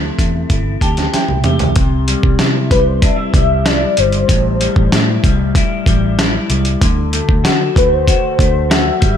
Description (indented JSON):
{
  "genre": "indie pop, bedroom pop",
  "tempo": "95 BPM",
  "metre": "4/4",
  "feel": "straight",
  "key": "C major",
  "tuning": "A4 = 443 Hz",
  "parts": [
    { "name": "electric guitar through a small old amp", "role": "accompaniment", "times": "0.0-9.2 s", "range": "A2 to G4", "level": "-19 LUFS", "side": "left 5 dB", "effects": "lush chorus, vibrato effect, slapback echo" },
    { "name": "reed electric piano", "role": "accompaniment", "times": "0.0-1.8 s", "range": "E3 to A5", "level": "-24 LUFS", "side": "right 3 dB", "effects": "fast tremolo, cassette tape, slapback echo" },
    { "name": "vintage muted fingered electric bass", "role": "bass", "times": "0.0-9.2 s", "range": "G1 to D3", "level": "-17 LUFS", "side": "equal", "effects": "none" },
    { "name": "dusty soul sampler-style drum kit", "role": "drums", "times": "0.2-9.2 s", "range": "hi-hat, kick drum, snare drum, toms", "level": "-15 LUFS", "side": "right 1 dB", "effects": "overdrive" },
    { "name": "warm velvety synth lead", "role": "melody", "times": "2.7-9.2 s", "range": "B4 to E5", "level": "-17 LUFS", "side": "left 2 dB", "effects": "analog chorus, slapback echo, ping-pong delay" }
  ],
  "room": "light reverb",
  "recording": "none",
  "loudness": "-11 LUFS",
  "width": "side -9 dB against mid",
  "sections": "0.0-1.8 A section; 1.8-9.2 B section",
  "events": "reed electric piano fill 0.5-1.8; drum fill 1.1-1.8",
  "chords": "0.0 C6; 1.8 C; 4.3 Am7; 6.8 D7"
}